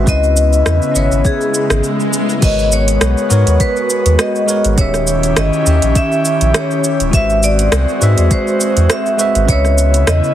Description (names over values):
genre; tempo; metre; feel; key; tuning
sunset chillout; 102 BPM; 4/4; swing 55% on 16ths; G# minor; A4 = 441 Hz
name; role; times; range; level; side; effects
bell-like tine electric piano; accompaniment; 0.0-10.3 s; D#3 to E5; -20 LUFS; moving between left 6 dB and right 6 dB; auto-pan, vintage 12-bit sampler grit, digital delay
airy breathy pad; sustained chords; 0.0-10.3 s; C#3 to G4; -20 LUFS; equal; chorus
warm sub bass; bass; 0.0-10.2 s; D#1 to G#2; -14 LUFS; equal; none
vibraphone with medium mallets; melody; 0.1-10.3 s; G#4 to E5; -17 LUFS; left 1 dB; digital delay
electronic kick drum; drums; 0.1-9.6 s; none; -14 LUFS; equal; overdrive
smooth R&B drum kit; drums; 0.1-10.3 s; crash cymbal, hi-hat, rim click, shaker; -19 LUFS; right 1 dB; overdrive
swell; sound effects; 1.5-2.4 s; none; -21 LUFS; equal; none
room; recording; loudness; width
moderate plate reverb, RT60 1.5 s; heavily compressed radio sound; -11 LUFS; side -11 dB against mid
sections
0.0-2.4 A section; 2.4-10.3 B section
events
filter sweep on tine electric piano 0.0-2.4; swell 1.5-2.4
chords
0.1 C#m9; 2.4 G#m11; 4.8 D#7b9; 7.1 G#7alt; 9.5 C#m9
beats
| 0.07 0.66 1.25 1.84 | 2.43 3.01 3.60 4.19 | 4.78 5.37 5.96 6.54 | 7.13 7.72 8.31 8.90 | 9.48 10.07